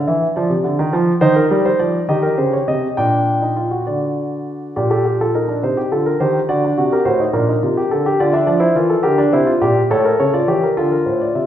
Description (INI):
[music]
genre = classical, baroque-style 3-part fugue for grand piano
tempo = 69 BPM (dotted quarters)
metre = 6/8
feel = straight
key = G minor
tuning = A4 = 438 Hz
[part]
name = warm grand piano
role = solo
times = 0.0-11.5 s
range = A2 to G5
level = -14 LUFS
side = equal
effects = none
[sound]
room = wet recital hall reverb, RT60 1.4 s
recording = heard from further back in the room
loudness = -14 LUFS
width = side -10 dB against mid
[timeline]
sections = 0.0-4.8 A section; 4.8-11.5 B section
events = none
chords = 0.4 Dm; 1.2 Eb; 2.1 Eb7; 3.0 Gm/Bb; 3.9 D; 4.8 Gm/Bb; 5.6 Am7b5/C; 6.5 D7; 7.4 Gm/Bb; 8.2 Dm; 9.1 Em7b5; 9.9 A7; 10.8 Dm